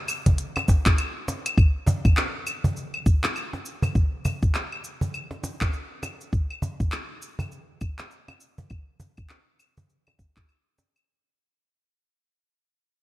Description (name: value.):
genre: downtempo.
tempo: 101 BPM.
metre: 4/4.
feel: swing 60% on 16ths.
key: none.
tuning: none.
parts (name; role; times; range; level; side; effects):
organic electronic drum kit; drums; 0.1-11.1 s; claves, handclaps, hi-hat, shaker; -30 LUFS; left 1 dB; none.
electronic kick drum; drums; 0.3-10.5 s; none; -20 LUFS; equal; none.
cajon; percussion; 0.3-10.9 s; none; -27 LUFS; right 1 dB; none.
room: light reverb, digital ambience.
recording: dark, warm production.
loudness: -23 LUFS.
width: side -17 dB against mid.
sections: 0.0-1.6 A section; 1.6-11.1 B section.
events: fade-out 1.6-11.1.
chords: none.